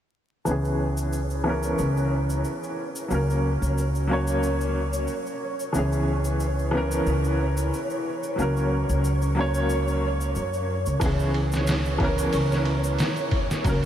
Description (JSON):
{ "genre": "trip hop", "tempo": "91 BPM", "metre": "4/4", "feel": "swing 54% on 16ths", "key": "C# dorian", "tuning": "A4 = 440 Hz", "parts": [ { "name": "bright upright piano", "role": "accompaniment", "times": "0.5-13.9 s", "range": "E3 to C#5", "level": "-26 LUFS", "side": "equal", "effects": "tremolo, low-pass filter, tape echo" }, { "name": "upright bass", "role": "bass", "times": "0.5-13.9 s", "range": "C#2 to F#2", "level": "-25 LUFS", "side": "equal", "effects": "none" }, { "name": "tube shaker", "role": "percussion", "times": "0.5-13.8 s", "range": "none", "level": "-42 LUFS", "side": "left 1 dB", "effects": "none" }, { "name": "flickering grainy texture", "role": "texture", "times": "0.7-13.9 s", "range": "C#5", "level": "-33 LUFS", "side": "equal", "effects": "built-in reverb, ensemble chorus" }, { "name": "trip hop sampler-style drum kit", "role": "drums", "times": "11.0-13.9 s", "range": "kick drum, ride cymbal, snare drum", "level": "-26 LUFS", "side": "equal", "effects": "overdrive" } ], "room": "wet huge ambient reverb, RT60 5.2 s", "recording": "dreamy mix soaked in reverb, vinyl crackle", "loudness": "-22 LUFS", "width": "side -10 dB against mid", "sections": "0.5-13.9 A section", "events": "filter sweep on upright piano 0.5-13.9", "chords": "0.5 C#m7; 3.1 F#/C#; 5.7 C#m7; 8.4 F#/C#; 11.0 C#m7" }